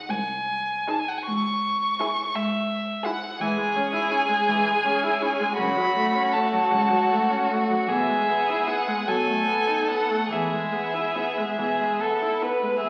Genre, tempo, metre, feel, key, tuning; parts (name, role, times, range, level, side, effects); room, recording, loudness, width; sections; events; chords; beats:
classical, slow romantic movement for string quartet; 47-58 BPM (dotted quarters); 6/8; rubato; C# minor, E major from 3.4 s; A4 = 440 Hz
rich violin; melody; 0.0-12.4 s; E5 to C#6; -28 LUFS; equal
clear cello; bass; 0.1-12.9 s; B#1 to B2; -35 LUFS; equal
clear violin; second line; 0.9-12.9 s; F#4 to B4; -27 LUFS; equal
clear viola; accompaniment; 0.9-12.9 s; C#3 to E5; -30 LUFS; equal
wet recital hall reverb, RT60 1.4 s; very old 78 rpm record, vinyl crackle; -24 LUFS; mono
0.0-12.8 A section
0.0 G#/B#; 1.3 C#m; 5.6 F#m; 7.9 E/B; 9.1 B7; 10.3 E
0.09 | 1.28 2.35 | 3.40 4.48 | 5.58 6.71 | 7.88 9.07 | 10.31 11.58 | 12.81